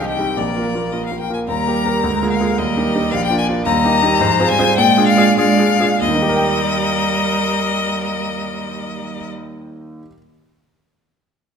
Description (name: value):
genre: quick classical-period movement for piano quartet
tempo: 92-112 BPM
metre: 2/4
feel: straight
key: Eb major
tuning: A4 = 440 Hz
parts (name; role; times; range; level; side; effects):
- rich violin; melody; 0.0-9.3 s; D5 to Bb5; -19 LUFS; left 7 dB; none
- rich cello; second line; 0.0-9.3 s; Eb3 to Ab3; -22 LUFS; right 6 dB; none
- rich violin; second line; 0.0-9.3 s; G4 to Eb5; -26 LUFS; left 4 dB; none
- warm concert grand piano; accompaniment; 0.0-10.2 s; Bb1 to G5; -20 LUFS; right 1 dB; none
room: wet recital hall reverb, RT60 1.3 s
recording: none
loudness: -14 LUFS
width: side -6 dB against mid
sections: 0.0-6.0 A section; 6.0-8.5 B section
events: slowing down 3.1-6.0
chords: 0.4 Bb; 1.5 Eb; 2.0 Bb7/D; 2.6 Eb; 3.1 Bb; 3.7 Eb; 4.2 Fm/Ab; 4.8 Bb7; 6.0 Eb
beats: | 0.37 0.93 | 1.49 2.04 | 2.58 3.12 | 3.66 4.21 | 4.79 5.38 | 6.02 6.65 | 7.28 7.90